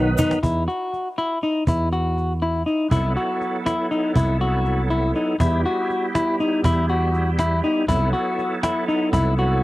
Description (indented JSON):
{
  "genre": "progressive instrumental, band music in an uneven meter",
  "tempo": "241 BPM (eighths)",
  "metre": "5/8",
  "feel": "straight",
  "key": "E harmonic minor",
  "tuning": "A4 = 440 Hz",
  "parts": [
    { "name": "bright tonewheel organ", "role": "accompaniment", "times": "0.0-0.4, 2.9-9.6 s", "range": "D#3 to B4", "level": "-26 LUFS", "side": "right 2 dB", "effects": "overdrive, chorus vibrato, slow rotary speaker, cassette tape" },
    { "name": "clean electric guitar", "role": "arpeggios", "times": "0.0-9.6 s", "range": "D#4 to F#4", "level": "-22 LUFS", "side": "left 2 dB", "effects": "cassette tape, analog delay" },
    { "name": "sustaining fretless electric bass", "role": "bass", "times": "0.0-9.6 s", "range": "B1 to E2", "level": "-21 LUFS", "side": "equal", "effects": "none" },
    { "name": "cajon", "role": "drums", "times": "0.2-9.4 s", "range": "none", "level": "-24 LUFS", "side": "equal", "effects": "cassette tape" }
  ],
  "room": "light reverb",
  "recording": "home recording on cassette",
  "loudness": "-19 LUFS",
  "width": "side -18 dB against mid",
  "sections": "0.4-5.4 A section; 5.4-9.6 B section",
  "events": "drum fill 0.0-0.4; kick and snare drop out 4.9-5.4",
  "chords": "0.4 Esus2; 2.9 C; 5.4 Em; 7.9 C"
}